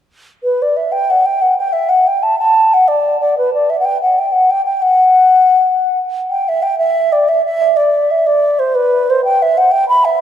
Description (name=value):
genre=celtic folk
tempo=123 BPM (dotted quarters)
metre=9/8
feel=straight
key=E minor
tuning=A4 = 440 Hz
part: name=mellow baroque flute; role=solo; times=0.4-10.2 s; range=B4 to B5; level=-11 LUFS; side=equal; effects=tape echo
room=wet plate reverb, RT60 2.6 s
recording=dreamy mix soaked in reverb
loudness=-11 LUFS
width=side -10 dB against mid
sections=0.4-6.3 A section; 6.3-10.2 B section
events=none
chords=none